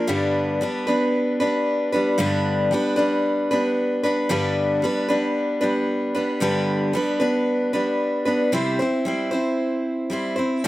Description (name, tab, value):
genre	country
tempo	114 BPM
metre	4/4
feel	straight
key	C major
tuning	A4 = 440 Hz
part	picked steel-string acoustic guitar	solo	0.0-10.7 s	G2 to C5	-20 LUFS	equal	slapback echo
room	little or no reverb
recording	recorded outdoors, with no room sound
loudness	-20 LUFS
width	side -16 dB against mid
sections	0.0-8.5 A section; 8.5-10.7 B section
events	none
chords	0.1 G; 8.5 C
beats	| 0.08 0.61 1.14 1.67 | 2.20 2.73 3.25 3.78 | 4.31 4.84 5.37 5.89 | 6.42 6.95 7.48 8.01 | 8.54 9.06 9.59 10.12 | 10.65